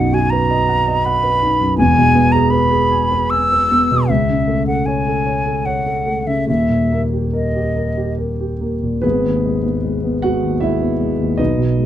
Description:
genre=classical, romantic duo for flute and grand piano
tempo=68-82 BPM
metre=3/4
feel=rubato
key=G# minor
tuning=A4 = 440 Hz
part: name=hollow concert flute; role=melody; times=0.0-8.1 s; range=D#5 to E6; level=-17 LUFS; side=equal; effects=none
part: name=dark grand piano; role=accompaniment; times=0.0-11.9 s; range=D#1 to G#5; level=-16 LUFS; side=equal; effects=none
room=light reverb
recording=dark, warm production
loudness=-14 LUFS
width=side -11 dB against mid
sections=0.0-9.0 A section; 9.0-11.9 B section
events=none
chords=0.0 B; 1.8 E; 4.1 A/C#; 6.5 D#; 9.0 G#m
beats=0.30 1.04 | 1.77 2.51 3.31 | 4.09 4.87 5.66 | 6.48 7.33 8.18 | 9.04 9.84 10.62 | 11.39

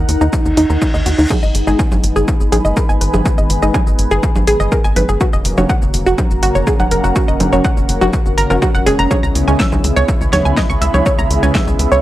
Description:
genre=melodic techno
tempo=123 BPM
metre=4/4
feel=straight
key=G# minor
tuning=A4 = 443 Hz
part: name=tight sequencer bass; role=bass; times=0.0-12.0 s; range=F#1 to E2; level=-17 LUFS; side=equal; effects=tube saturation, sidechain pumping
part: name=warbly tape-like pad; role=texture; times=0.0-12.0 s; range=C#4 to B5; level=-22 LUFS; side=left 1 dB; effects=chorus, built-in reverb, phaser, sidechain pumping
part: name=deep house drum kit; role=drums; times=0.1-12.0 s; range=congas, crash cymbal, hi-hat, shaker, snare drum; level=-21 LUFS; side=right 1 dB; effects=sidechain pumping on hats, small room ambience, sidechain pumping on perc, sidechain pumping on cymbals
part: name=analog pluck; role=arpeggios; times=0.2-12.0 s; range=D#4 to E6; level=-18 LUFS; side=right 1 dB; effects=chorus, sidechain pumping, analog delay
part: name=electronic kick drum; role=drums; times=0.3-11.6 s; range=none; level=-17 LUFS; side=equal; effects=overdrive, small room ambience
part: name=reverse cymbal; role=sound effects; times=0.5-1.3 s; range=none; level=-26 LUFS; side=left 1 dB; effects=none
part: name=warm analog pad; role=sustained chords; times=1.3-12.0 s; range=C#3 to E4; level=-24 LUFS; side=equal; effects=wide subtle chorus, sidechain pumping
part: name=filtered dub chord stab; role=stabs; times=1.7-11.6 s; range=C#3 to G#4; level=-22 LUFS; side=equal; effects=chorus, cassette tape, sidechain pumping, analog delay
room=light reverb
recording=dry, gritty hardware recording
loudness=-12 LUFS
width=side -14 dB against mid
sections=0.0-12.0 A section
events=filter sweep on synth pluck 0.0-12.0; reverse cymbal 0.5-1.3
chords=0.0 D#m; 1.3 G#m; 5.2 F#; 9.1 C#m7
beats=0.33 0.82 | 1.30 1.79 2.28 2.77 | 3.26 3.74 4.23 4.72 | 5.21 5.70 6.18 6.67 | 7.16 7.65 8.13 8.62 | 9.11 9.60 10.09 10.57 | 11.06 11.55

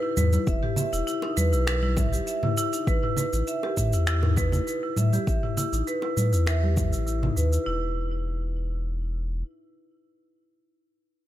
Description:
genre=organic downtempo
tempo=100 BPM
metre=4/4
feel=straight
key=unclear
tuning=A4 = 440 Hz
part: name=marimba with hard mallets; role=arpeggios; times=0.0-7.9 s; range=D#4 to E5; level=-28 LUFS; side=right 1 dB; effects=low-pass filter, digital delay
part: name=warm sub bass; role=bass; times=0.2-9.4 s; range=E1 to A2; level=-25 LUFS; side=equal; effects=sidechain pumping
part: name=afro-pop drum kit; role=drums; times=0.2-7.6 s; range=cabasa, finger snaps, toms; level=-31 LUFS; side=left 2 dB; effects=overdrive
part: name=congas and bongos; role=percussion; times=0.2-7.3 s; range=none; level=-34 LUFS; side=right 2 dB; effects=none
part: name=electronic kick drum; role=drums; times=0.5-6.9 s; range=none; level=-27 LUFS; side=equal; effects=overdrive
room=digital ambience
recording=none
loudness=-23 LUFS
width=side -13 dB against mid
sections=0.0-7.7 A section; 7.7-10.1 B section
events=filter sweep on marimba 0.0-7.7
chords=0.0 E5; 2.9 A5; 7.7 N.C.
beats=| 0.47 1.07 1.67 2.27 | 2.87 3.47 4.07 4.67 | 5.27 5.87 6.47 7.07 | 7.67 8.27 8.87

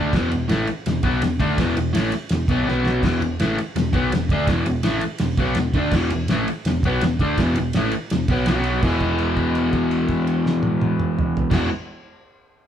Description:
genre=garage rock duo or trio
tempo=166 BPM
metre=4/4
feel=straight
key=E major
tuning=A4 = 443 Hz
part: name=crunchy overdriven guitar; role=riff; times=0.0-11.7 s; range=E2 to E4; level=-21 LUFS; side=left 1 dB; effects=none
part: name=hollow-body short-scale picked electric bass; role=bass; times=0.0-11.7 s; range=E1 to D2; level=-27 LUFS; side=right 1 dB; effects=overdrive
part: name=cloth-damped thuddy drum kit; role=drums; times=0.1-11.6 s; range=crash cymbal, kick drum, ride cymbal, snare drum, toms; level=-24 LUFS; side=equal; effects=none
room=light reverb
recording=band playing live in one room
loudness=-18 LUFS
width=side -9 dB against mid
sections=0.0-8.8 A section; 8.8-11.7 B section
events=drum fill 2.7-3.0; held note 8.8-11.5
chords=0.0 E5; 2.7 B5; 3.0 E5; 8.5 B5; 8.8 E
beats=| 0.13 0.49 0.86 1.22 | 1.58 1.94 2.30 2.67 | 3.03 3.39 3.75 4.11 | 4.47 4.84 5.20 5.56 | 5.92 6.29 6.65 7.01 | 7.37 7.74 8.10 8.46 | 8.82 9.19 9.55 9.91 | 10.27 10.64 11.00 11.36

